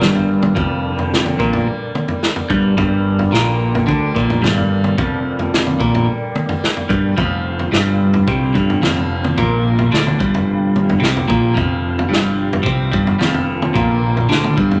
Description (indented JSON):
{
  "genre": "psychedelic rock",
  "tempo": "109 BPM",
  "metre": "4/4",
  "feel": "straight",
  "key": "G minor",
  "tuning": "A4 = 440 Hz",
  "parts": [
    { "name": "tonewheel organ", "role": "sustained chords", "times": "0.0-14.8 s", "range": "C3 to F5", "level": "-31 LUFS", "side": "equal", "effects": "none" },
    { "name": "twelve-string electric guitar", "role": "riff", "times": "0.0-14.8 s", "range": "F2 to D3", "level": "-18 LUFS", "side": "equal", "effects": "phaser" },
    { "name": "fuzz fingered electric bass", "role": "bass", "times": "0.0-14.8 s", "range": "F1 to D2", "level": "-26 LUFS", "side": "equal", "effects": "overdrive" },
    { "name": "tanpura", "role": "drone", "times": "0.0-14.8 s", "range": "G2 to G3", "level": "-31 LUFS", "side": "equal", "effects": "none" },
    { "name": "vintage drum kit", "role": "drums", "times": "0.0-14.8 s", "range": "kick drum, snare drum, toms", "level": "-22 LUFS", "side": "equal", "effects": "none" }
  ],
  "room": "moderate large studio reverb, RT60 1.1 s",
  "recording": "none",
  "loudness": "-16 LUFS",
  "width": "mono",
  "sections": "0.0-14.8 A section",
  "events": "none",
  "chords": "0.0 Gm; 7.2 F5"
}